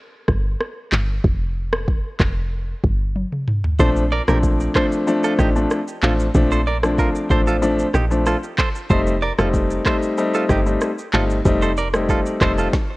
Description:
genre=afrobeats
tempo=94 BPM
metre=4/4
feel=straight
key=Bb major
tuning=A4 = 440 Hz
part: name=woody log drum bass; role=bass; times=0.3-12.7 s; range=F1 to Bb1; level=-21 LUFS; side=equal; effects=none
part: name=afro-pop drum kit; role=drums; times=0.3-12.9 s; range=handclaps, kick drum, rim click, shaker, snare drum, toms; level=-21 LUFS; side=equal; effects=overdrive, vintage 12-bit sampler grit
part: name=clear baby grand piano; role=accompaniment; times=3.8-12.7 s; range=F3 to Eb4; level=-20 LUFS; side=left 2 dB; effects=none
part: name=direct-recorded clean electric guitar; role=riff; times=3.8-12.7 s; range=Eb4 to D5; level=-25 LUFS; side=right 4 dB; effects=tape echo
room=light reverb, digital ambience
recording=worn, warbling old tape, cassette tape, warbly pitch drift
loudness=-17 LUFS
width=side -21 dB against mid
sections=0.0-13.0 A section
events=break 0.0-3.8; drum fill 3.2-3.8; stop 12.7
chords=0.0 Fsus2; 3.8 Bbmaj9; 8.9 F7

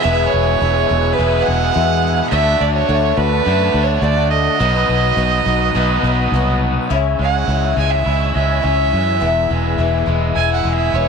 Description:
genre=rock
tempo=105 BPM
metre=4/4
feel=straight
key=unclear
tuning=A4 = 440 Hz
part: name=rich fiddle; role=melody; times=0.0-11.1 s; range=B4 to G#5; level=-19 LUFS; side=right 13 dB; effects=none
part: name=picked twelve-string acoustic guitar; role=accompaniment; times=0.0-11.1 s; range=E2 to G#4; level=-21 LUFS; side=left 14 dB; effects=none
part: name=tonewheel organ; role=sustained chords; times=0.0-11.1 s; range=E3 to F#6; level=-26 LUFS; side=equal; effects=chorus vibrato, slow rotary speaker
part: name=crunchy overdriven guitar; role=riff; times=0.0-11.1 s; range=E2 to G#4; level=-21 LUFS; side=equal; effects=none
part: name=fingered electric bass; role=bass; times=0.0-11.1 s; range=E1 to F#2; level=-18 LUFS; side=equal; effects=none
room=light reverb, studio reverb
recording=1960s-style stereo with parts hard left and right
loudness=-14 LUFS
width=side -5 dB against mid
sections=0.0-6.9 A section; 6.9-11.1 B section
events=fiddle solo 6.9-11.1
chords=0.0 E; 2.3 D; 4.6 B; 6.9 C#m; 9.2 E

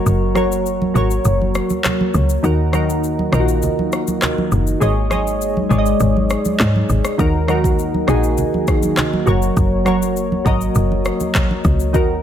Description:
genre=afrobeats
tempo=101 BPM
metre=4/4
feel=straight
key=unclear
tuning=A4 = 440 Hz
part: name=glassy digital keys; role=accompaniment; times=0.0-12.1 s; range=Eb3 to Eb5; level=-19 LUFS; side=equal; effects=chorus
part: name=glass harmonica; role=sustained chords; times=0.0-12.2 s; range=Ab3 to Eb5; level=-26 LUFS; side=left 1 dB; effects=none
part: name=woody log drum bass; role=bass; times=0.1-12.2 s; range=Gb1 to Ab2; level=-18 LUFS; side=equal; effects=none
part: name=afro-pop drum kit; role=drums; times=0.1-12.1 s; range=handclaps, kick drum, rim click, shaker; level=-21 LUFS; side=left 1 dB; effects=none
part: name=congas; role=percussion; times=0.4-11.8 s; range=none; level=-24 LUFS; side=right 3 dB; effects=none
room=light reverb, digital ambience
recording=none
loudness=-14 LUFS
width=side -10 dB against mid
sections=0.0-12.2 A section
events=break 0.0-7.2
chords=0.0 Gb; 2.4 Ebm; 4.8 Absus4; 7.2 Ebm; 9.3 Gb

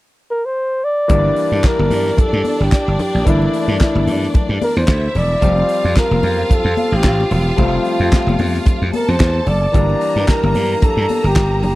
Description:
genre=disco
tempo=111 BPM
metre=4/4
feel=swing 56% on 16ths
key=G dorian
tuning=A4 = 440 Hz
part: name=breathy flugelhorn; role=melody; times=0.3-11.8 s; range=E4 to D5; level=-19 LUFS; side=equal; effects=none
part: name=clear studio string section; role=second line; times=1.1-11.8 s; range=Bb3 to Bb5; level=-24 LUFS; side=right 2 dB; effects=none
part: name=clear concert grand piano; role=accompaniment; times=1.1-11.8 s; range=E3 to D4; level=-23 LUFS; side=left 6 dB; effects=none
part: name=slap bass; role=bass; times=1.1-11.8 s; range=E1 to G2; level=-17 LUFS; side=equal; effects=none
part: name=damped 70s drum kit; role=drums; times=1.1-11.8 s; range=handclaps, hi-hat, kick drum, snare drum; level=-15 LUFS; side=equal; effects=none
part: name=congas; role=percussion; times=1.8-11.8 s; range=none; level=-25 LUFS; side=left 4 dB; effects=none
room=little or no reverb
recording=dry, close 1970s-style studio recording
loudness=-13 LUFS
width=side -17 dB against mid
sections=0.0-1.1 A section; 1.1-11.8 B section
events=none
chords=0.0 N.C.; 1.1 Gm69; 5.4 F; 9.7 Gm69

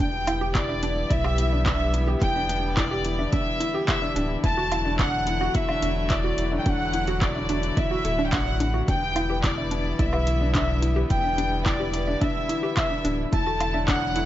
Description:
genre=piano and strings electronica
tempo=108 BPM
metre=4/4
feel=straight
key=E minor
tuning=A4 = 440 Hz
part: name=warm studio violin section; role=melody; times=0.0-14.3 s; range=D5 to A5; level=-28 LUFS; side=equal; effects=none
part: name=muted string quartet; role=sustained chords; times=0.0-14.3 s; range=D3 to E4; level=-33 LUFS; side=left 1 dB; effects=none
part: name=warbly dusty pluck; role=arpeggios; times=0.0-14.3 s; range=D4 to E5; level=-34 LUFS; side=right 1 dB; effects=chorus, sidechain pumping, tape echo
part: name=felt-muted upright piano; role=riff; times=0.0-14.3 s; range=D4 to B4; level=-30 LUFS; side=left 2 dB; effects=none
part: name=warm sub bass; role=bass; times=0.0-14.3 s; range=D1 to B1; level=-28 LUFS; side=equal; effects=tube saturation, sidechain pumping
part: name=deep house drum kit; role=drums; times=0.0-14.3 s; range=handclaps, hi-hat, woodblock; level=-30 LUFS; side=right 1 dB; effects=overdrive, small room reverb
part: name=electronic kick drum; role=drums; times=0.0-14.0 s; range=none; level=-27 LUFS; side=equal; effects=overdrive, small room reverb
room=light reverb, small room ambience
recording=nothing above 7.7 kHz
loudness=-22 LUFS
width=side -13 dB against mid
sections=0.0-14.3 A section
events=drop 0.0-14.3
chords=0.0 Em7; 4.4 Dadd9/E; 8.9 Em7; 13.3 Dadd9/E

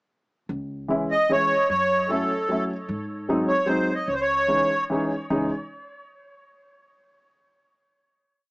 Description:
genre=musette waltz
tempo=151 BPM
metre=3/4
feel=straight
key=C# harmonic minor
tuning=A4 = 440 Hz
part: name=upright bass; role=bass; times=0.5-5.5 s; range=C#2 to G#2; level=-33 LUFS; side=equal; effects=none
part: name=warm upright piano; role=accompaniment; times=0.9-5.5 s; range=E3 to E4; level=-24 LUFS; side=equal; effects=none
part: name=accordion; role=melody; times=1.1-4.8 s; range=A4 to D#5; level=-22 LUFS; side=equal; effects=light tremolo tuning, tape echo
room=light reverb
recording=small speaker sound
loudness=-21 LUFS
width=side -27 dB against mid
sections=0.5-5.3 A section; 5.3-6.5 final chord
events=none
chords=0.5 C#m; 1.7 F#m7; 2.9 G#7; 4.1 C#madd9

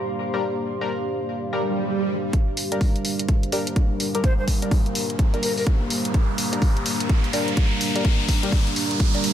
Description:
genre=bass house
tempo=126 BPM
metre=4/4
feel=swing 62% on 16ths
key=G minor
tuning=A4 = 440 Hz
part: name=dark analog pad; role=sustained chords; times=0.0-9.3 s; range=G3 to D5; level=-28 LUFS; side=equal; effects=chorus, sidechain pumping
part: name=warbly tape-like pad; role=texture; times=0.0-9.3 s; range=G4 to C6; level=-32 LUFS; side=right 1 dB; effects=chorus, built-in reverb, sidechain pumping
part: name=band-passed chord stab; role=stabs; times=0.3-9.2 s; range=G3 to Bb4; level=-30 LUFS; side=left 2 dB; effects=chorus, phaser, sidechain pumping, digital delay
part: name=swell and riser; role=sound effects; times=1.5-9.3 s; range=none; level=-29 LUFS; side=right 2 dB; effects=none
part: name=electronic hi-hat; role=drums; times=2.3-9.3 s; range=none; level=-28 LUFS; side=equal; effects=high-pass filter on hats, low-pass filter on hats
part: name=electronic kick drum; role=drums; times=2.3-9.1 s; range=none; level=-20 LUFS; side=equal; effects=none
part: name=breathy mellow jazz flute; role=melody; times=4.2-5.6 s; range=Bb4 to C5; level=-30 LUFS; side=left 1 dB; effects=digital delay
room=light reverb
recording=low-pass filter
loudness=-20 LUFS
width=side -10 dB against mid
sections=0.0-2.3 A section; 2.3-9.3 B section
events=swell 1.5-2.3; build-up 2.3-9.3; riser 2.4-9.3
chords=0.0 Gm

